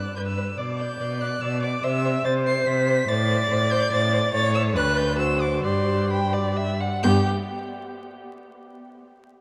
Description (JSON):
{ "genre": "quick classical-period movement for string quartet", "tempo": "127-145 BPM", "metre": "3/4", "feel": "rubato", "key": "G major", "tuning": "A4 = 441 Hz", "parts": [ { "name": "rich violin", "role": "melody", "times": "0.0-7.3 s", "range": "B5 to C7", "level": "-31 LUFS", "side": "equal", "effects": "none" }, { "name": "rich violin", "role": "second line", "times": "0.0-7.3 s", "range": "G4 to G5", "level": "-31 LUFS", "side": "equal", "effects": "none" }, { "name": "rich viola", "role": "accompaniment", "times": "0.0-7.3 s", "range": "B3 to E5", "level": "-30 LUFS", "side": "equal", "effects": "none" }, { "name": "rich cello", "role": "bass", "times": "0.0-7.3 s", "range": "D2 to C3", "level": "-27 LUFS", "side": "equal", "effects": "none" } ], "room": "wet cathedral reverb, RT60 5.7 s", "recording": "in a vast, echoing space, vinyl crackle", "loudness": "-23 LUFS", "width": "mono", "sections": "0.0-7.0 A section; 7.0-8.4 B section", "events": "slowing down 3.7-7.0", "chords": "0.0 G; 0.6 G/B; 1.8 C; 3.1 Am; 4.3 A; 4.8 G/D; 5.2 D7; 5.6 G", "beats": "0.16 | 0.58 1.00 1.42 | 1.83 2.25 2.67 | 3.09 3.51 3.92 | 4.34 4.76 5.19 | 5.64 6.10 6.57 | 7.04" }